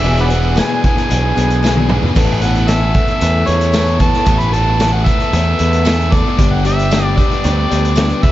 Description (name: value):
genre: folk rock and heartland rock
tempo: 114 BPM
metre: 4/4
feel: straight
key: unclear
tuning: A4 = 440 Hz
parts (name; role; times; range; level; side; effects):
- overdriven harmonica; melody; 0.0-8.3 s; B4 to B5; -19 LUFS; equal; tape echo
- picked acoustic archtop guitar; accompaniment; 0.0-8.3 s; E2 to A4; -21 LUFS; left 4 dB; tape echo
- biting overdriven guitar; riff; 0.0-8.3 s; E2 to A4; -20 LUFS; equal; tape echo
- modern bright picked electric bass; bass; 0.0-8.3 s; E1 to E2; -16 LUFS; equal; none
- vintage drum kit; drums; 0.2-8.3 s; crash cymbal, hi-hat, kick drum, snare drum, toms; -17 LUFS; equal; tape echo
- tambourine; percussion; 0.6-8.1 s; none; -37 LUFS; right 7 dB; none
room: light reverb, small room ambience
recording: echo-heavy mix, nothing above 7.7 kHz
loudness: -11 LUFS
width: side -14 dB against mid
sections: 0.0-8.3 A section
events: drum fill 1.6-2.2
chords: 0.0 E7; 2.2 Asus2; 6.4 G